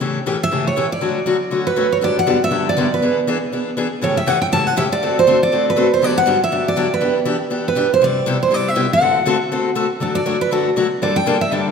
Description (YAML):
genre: jazz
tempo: 240 BPM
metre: 4/4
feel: swing 56% on 8ths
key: G major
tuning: A4 = 440 Hz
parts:
  - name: picked steel-string acoustic guitar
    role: accompaniment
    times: 0.0-11.7 s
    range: G2 to A4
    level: -19 LUFS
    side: left 3 dB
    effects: none
  - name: picked steel-string acoustic guitar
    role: melody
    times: 0.4-11.7 s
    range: A4 to A5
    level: -17 LUFS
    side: right 2 dB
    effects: none
room: wet recital hall reverb, RT60 1.6 s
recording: none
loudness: -15 LUFS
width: side -6 dB against mid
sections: 0.0-2.0 A section; 2.0-10.0 B section; 10.0-11.7 C section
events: steel-string acoustic guitar solo 10.0-11.7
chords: 0.0 A7; 1.0 Dmaj7; 2.0 Gmaj7; 3.0 E7; 4.0 A7; 5.0 D7; 6.0 Gmaj7; 7.0 Em7; 8.0 Cmaj7; 9.0 D7; 10.0 D; 11.0 Gmadd9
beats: | 0.00 0.25 0.50 0.75 | 1.00 1.25 1.50 1.76 | 2.01 2.26 2.51 2.76 | 3.01 3.26 3.51 3.76 | 4.01 4.26 4.51 4.76 | 5.01 5.26 5.51 5.76 | 6.01 6.26 6.51 6.76 | 7.01 7.26 7.51 7.76 | 8.01 8.26 8.51 8.76 | 9.01 9.26 9.51 9.76 | 10.01 10.26 10.51 10.76 | 11.01 11.26 11.51